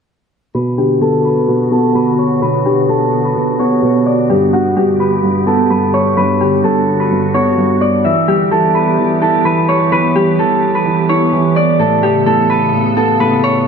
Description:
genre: hip hop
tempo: 128 BPM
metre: 4/4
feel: half-time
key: B minor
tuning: A4 = 441 Hz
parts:
  - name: Celtic harp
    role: melody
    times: 0.5-13.7 s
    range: F#4 to E5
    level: -14 LUFS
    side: left 1 dB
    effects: low-pass filter, digital delay
  - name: felt-muted upright piano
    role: accompaniment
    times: 0.5-13.7 s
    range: G2 to E4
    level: -16 LUFS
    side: right 2 dB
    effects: low-pass filter
  - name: glassy FM pad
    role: sustained chords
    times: 0.5-13.7 s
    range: C#3 to A4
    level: -18 LUFS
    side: right 1 dB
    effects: ensemble chorus, built-in reverb, low-pass filter
room: light reverb, studio reverb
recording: none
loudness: -11 LUFS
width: side -6 dB against mid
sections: 0.5-13.7 A section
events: filter sweep 0.5-13.7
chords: 0.5 Bm; 4.3 G; 8.0 Em; 11.8 Aadd9

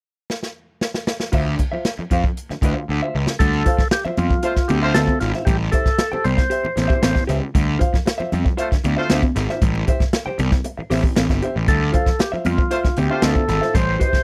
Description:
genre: funk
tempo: 116 BPM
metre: 4/4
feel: straight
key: D minor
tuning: A4 = 440 Hz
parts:
  - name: swinging big-band drum kit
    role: drums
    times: 0.3-14.2 s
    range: crash cymbal, hi-hat, kick drum, snare drum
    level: -22 LUFS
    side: equal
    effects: none
  - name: vintage hollow-body jazz guitar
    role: accompaniment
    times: 1.3-14.2 s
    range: F4 to G5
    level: -28 LUFS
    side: equal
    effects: none
  - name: fuzz picked electric bass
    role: bass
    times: 1.3-14.2 s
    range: G1 to F2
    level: -24 LUFS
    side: equal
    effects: overdrive
  - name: percussive tonewheel organ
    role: melody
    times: 3.4-7.2, 11.7-14.2 s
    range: F4 to C5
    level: -25 LUFS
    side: equal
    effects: slow rotary speaker
  - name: congas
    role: percussion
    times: 3.4-13.9 s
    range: none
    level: -28 LUFS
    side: equal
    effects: none
  - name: clear horn section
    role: second line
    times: 4.4-5.0, 8.6-9.1, 12.7-13.3 s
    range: A3 to C5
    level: -27 LUFS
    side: equal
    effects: none
room: little or no reverb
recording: dry, close 1970s-style studio recording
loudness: -20 LUFS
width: mono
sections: 0.0-1.3 A section; 1.3-3.4 B section; 3.4-14.2 C section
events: drum fill 0.3-1.3, 2.9-3.4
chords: 0.0 N.C.; 1.3 Dm9; 5.5 Am7; 7.5 Dm9; 9.6 Am7; 11.7 Dm9

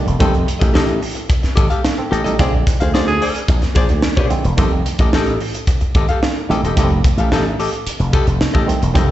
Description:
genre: funk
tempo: 110 BPM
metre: 4/4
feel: straight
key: F mixolydian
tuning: A4 = 440 Hz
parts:
  - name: muted clav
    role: stabs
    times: 0.0-9.1 s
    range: D3 to A4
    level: -23 LUFS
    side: right 5 dB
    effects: tape echo, slapback echo
  - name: archtop guitar, miked and amplified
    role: accompaniment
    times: 0.1-9.1 s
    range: G4 to F5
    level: -22 LUFS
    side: left 4 dB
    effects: slapback echo
  - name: slap bass with an envelope filter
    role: bass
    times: 0.1-9.1 s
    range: E1 to Bb2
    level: -18 LUFS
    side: equal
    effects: none
  - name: crisp fusion drum kit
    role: drums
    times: 0.1-9.1 s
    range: hi-hat, kick drum, snare drum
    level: -17 LUFS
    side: equal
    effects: none
  - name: breathy tenor saxophone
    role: second line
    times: 3.1-3.4 s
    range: Ab4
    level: -21 LUFS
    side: right 1 dB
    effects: slapback echo
room: small room ambience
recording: live gig heard through the venue's PA, recital hall reverb, nothing above 8.0 kHz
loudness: -14 LUFS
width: side -13 dB against mid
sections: 0.0-9.1 A section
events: band accent 2.4-4.6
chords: 0.0 F9; 2.4 Bb9; 4.6 F9

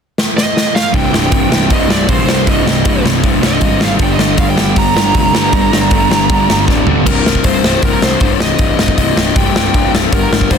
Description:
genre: punk rock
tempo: 157 BPM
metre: 4/4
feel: straight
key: C minor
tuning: A4 = 440 Hz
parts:
  - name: big rock drum kit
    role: drums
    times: 0.2-10.6 s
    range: crash cymbal, hi-hat, kick drum, snare drum, toms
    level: -14 LUFS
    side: equal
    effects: none
  - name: high-gain lead guitar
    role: melody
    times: 0.4-10.6 s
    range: Bb4 to Bb5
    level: -18 LUFS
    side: right 5 dB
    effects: distortion, tape echo
  - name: distorted electric guitar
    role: riff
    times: 0.9-10.6 s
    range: C2 to G3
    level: -16 LUFS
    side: left 15 dB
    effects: distortion
  - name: sludgy distorted guitar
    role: riff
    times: 0.9-7.1 s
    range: C2 to G3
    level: -17 LUFS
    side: right 14 dB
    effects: overdrive
  - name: fuzz picked electric bass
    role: bass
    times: 0.9-10.6 s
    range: C1 to G2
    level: -18 LUFS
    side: equal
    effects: overdrive
room: light reverb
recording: dense, heavily limited modern master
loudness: -10 LUFS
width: side -7 dB against mid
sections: 0.9-7.1 A section; 7.1-10.6 B section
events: drum fill 0.2-0.9, 6.7-7.1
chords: 0.0 N.C.; 0.9 Cm; 4.0 Gm; 7.1 Cm

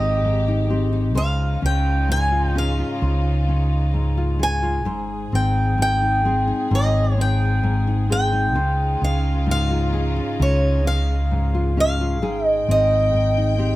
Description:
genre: folk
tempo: 65 BPM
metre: 4/4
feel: straight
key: Ab major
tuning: A4 = 440 Hz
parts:
  - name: picked swing-style acoustic guitar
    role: melody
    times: 0.0-13.8 s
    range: Db5 to Ab5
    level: -23 LUFS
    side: right 1 dB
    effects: none
  - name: nylon-string guitar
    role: accompaniment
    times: 0.0-13.8 s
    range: Ab2 to C5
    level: -25 LUFS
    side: left 3 dB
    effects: none
  - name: warm chamber string section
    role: sustained chords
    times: 0.0-13.8 s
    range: Db3 to G5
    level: -31 LUFS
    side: left 1 dB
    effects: none
  - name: fretless electric bass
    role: bass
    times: 0.0-13.8 s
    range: Ab1 to Db2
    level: -20 LUFS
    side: equal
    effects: none
room: little or no reverb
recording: close, detailed microphones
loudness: -18 LUFS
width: side -17 dB against mid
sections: 0.0-13.8 A section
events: none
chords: 0.0 Abmaj7; 1.2 Dbmaj9; 4.9 Abmaj7; 8.6 Dbmaj9; 12.2 Abmaj7

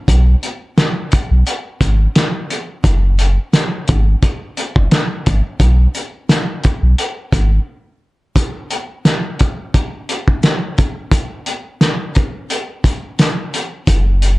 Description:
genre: hip hop, boom-bap hip-hop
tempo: 87 BPM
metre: 4/4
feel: swing 56% on 16ths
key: unclear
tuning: A4 = 440 Hz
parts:
  - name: warm sub bass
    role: bass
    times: 0.1-7.6, 13.9-14.4 s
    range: F#1 to B1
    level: -12 LUFS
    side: equal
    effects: none
  - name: cloth-damped thuddy drum kit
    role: drums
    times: 0.1-14.4 s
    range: hi-hat, kick drum, snare drum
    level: -14 LUFS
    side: equal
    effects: vintage 12-bit sampler grit
room: little or no reverb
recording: dark, warm production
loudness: -14 LUFS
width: side -21 dB against mid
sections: 0.0-14.4 A section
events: break 7.7-8.4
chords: none

